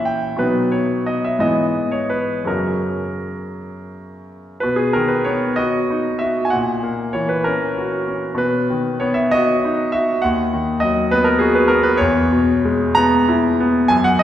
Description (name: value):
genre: classical, romantic character piece for solo piano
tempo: 55-68 BPM (dotted quarters)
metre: 6/8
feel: rubato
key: B major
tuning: A4 = 440 Hz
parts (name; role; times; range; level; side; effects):
- clear concert grand piano; solo; 0.0-14.2 s; D#2 to A#5; -16 LUFS; equal; none
room: wet concert hall reverb, RT60 2.4 s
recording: heard from further back in the room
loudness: -16 LUFS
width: side -11 dB against mid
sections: 0.0-4.6 A section; 4.6-14.2 B section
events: none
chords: 0.4 B; 1.4 E/G#; 2.5 F#; 4.6 B; 6.5 F#7/A#; 8.4 B; 10.2 B/D#; 12.0 C#m7/E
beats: | 0.42 1.43 | 2.48 3.57 | 4.63 5.58 | 6.53 7.46 | 8.40 9.31 | 10.22 11.12 | 12.01 12.99 | 13.92